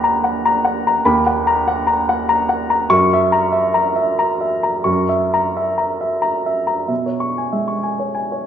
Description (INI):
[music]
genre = neoclassical minimalist piano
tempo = 87-98 BPM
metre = 3/4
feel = rubato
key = B major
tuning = A4 = 439 Hz
[part]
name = warm upright piano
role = solo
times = 0.0-8.5 s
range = D#2 to C#6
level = -15 LUFS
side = equal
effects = none
[sound]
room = moderate recital hall reverb, RT60 1.4 s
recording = recorded in a church or concert hall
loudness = -15 LUFS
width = side -9 dB against mid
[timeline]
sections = 0.0-6.9 A section; 6.9-8.5 B section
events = none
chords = 0.0 Bmaj7/D#; 2.9 F#7; 6.9 C#m/B